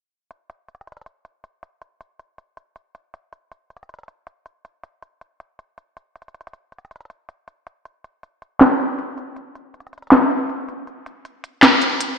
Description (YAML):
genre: hip hop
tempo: 159 BPM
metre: 4/4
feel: half-time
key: none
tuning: none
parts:
  - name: trap drum kit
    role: drums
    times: 0.3-12.1 s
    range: handclaps, hi-hat, snare drum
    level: -14 LUFS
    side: equal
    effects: none
room: wet lush hall reverb, RT60 1.8 s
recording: low-pass filter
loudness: -14 LUFS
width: side -7 dB against mid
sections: 0.3-12.2 A section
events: filter sweep 0.3-12.2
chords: none